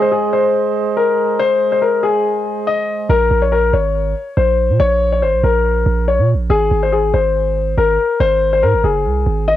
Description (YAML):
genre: hip hop, drill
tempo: 141 BPM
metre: 4/4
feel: half-time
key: Bb minor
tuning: A4 = 443 Hz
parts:
  - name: dark concert grand piano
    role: melody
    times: 0.0-9.6 s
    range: Ab4 to Eb5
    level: -15 LUFS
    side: left 4 dB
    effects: cassette tape
  - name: soft electric-piano-like synth keys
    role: accompaniment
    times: 0.0-3.1 s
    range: Ab3 to Eb5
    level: -20 LUFS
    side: right 10 dB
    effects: chorus, tremolo, cassette tape
  - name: long sustained 808-style bass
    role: bass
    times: 3.1-9.6 s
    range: Gb1 to Bb2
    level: -16 LUFS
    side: right 2 dB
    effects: none
room: light reverb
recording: home recording on cassette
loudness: -13 LUFS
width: side -12 dB against mid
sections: 0.0-3.1 A section; 3.1-9.6 B section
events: none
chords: 0.0 Ab; 3.1 Bbm7; 6.5 Ab